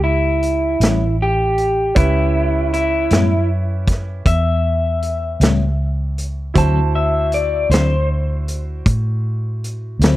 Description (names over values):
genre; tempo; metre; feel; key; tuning
slow blues; 52 BPM (dotted quarters); 12/8; straight; A mixolydian; A4 = 441 Hz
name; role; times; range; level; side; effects
electric guitar through a small old amp; melody; 0.0-8.1 s; E4 to A5; -19 LUFS; equal; spring reverb
bright upright piano; accompaniment; 0.0-10.2 s; C#4 to B5; -29 LUFS; right 5 dB; none
vintage muted fingered electric bass; bass; 0.0-10.2 s; A1 to A2; -18 LUFS; equal; none
vintage drum kit; drums; 0.4-10.2 s; hi-hat, kick drum, snare drum; -17 LUFS; equal; none
clean electric guitar; accompaniment; 0.8-10.2 s; A2 to E4; -21 LUFS; left 4 dB; tremolo
room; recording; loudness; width
little or no reverb; dry, close 1970s-style studio recording; -15 LUFS; side -15 dB against mid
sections
0.0-10.2 A section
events
clean electric guitar solo 0.0-10.2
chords
0.0 A9; 6.6 D9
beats
0.80 | 1.95 3.10 4.26 5.41 | 6.56 7.71 8.85 10.00